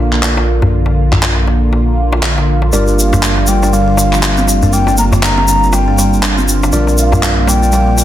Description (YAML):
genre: afro house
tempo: 120 BPM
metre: 4/4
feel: swing 59% on 16ths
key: G minor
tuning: A4 = 439 Hz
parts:
  - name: warm analog pad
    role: sustained chords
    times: 0.0-8.0 s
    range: D3 to F4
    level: -19 LUFS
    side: right 1 dB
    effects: chorus
  - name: mellow tine electric piano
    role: stabs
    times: 0.0-8.0 s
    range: D4 to D5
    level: -21 LUFS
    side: left 1 dB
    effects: phaser, low-pass filter, tape echo
  - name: dark detuned saw bass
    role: bass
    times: 0.0-8.0 s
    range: G1 to Bb1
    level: -14 LUFS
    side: equal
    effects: none
  - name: electronic handclaps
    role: drums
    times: 0.1-7.3 s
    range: none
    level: -17 LUFS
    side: equal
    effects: overdrive
  - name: darbuka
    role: percussion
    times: 0.4-8.0 s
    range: none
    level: -17 LUFS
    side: left 1 dB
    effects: none
  - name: buzzing kalimba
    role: arpeggios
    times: 2.7-8.0 s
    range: F3 to D4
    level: -18 LUFS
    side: right 1 dB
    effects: tape echo
  - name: egg shaker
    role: percussion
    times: 2.7-8.0 s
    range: none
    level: -20 LUFS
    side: left 1 dB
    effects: none
  - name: mellow hollow concert flute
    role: melody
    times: 3.0-8.0 s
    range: F5 to Bb5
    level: -17 LUFS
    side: left 1 dB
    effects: tape echo
room: light reverb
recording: dense, heavily limited modern master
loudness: -9 LUFS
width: side -12 dB against mid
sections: 0.0-8.0 A section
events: none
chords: 0.0 Bbmaj7; 2.7 Gm7; 6.7 Bb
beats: 0.23 | 0.73 1.23 1.73 2.23 | 2.73 3.23 3.73 4.23 | 4.73 5.23 5.73 6.23 | 6.73 7.23 7.73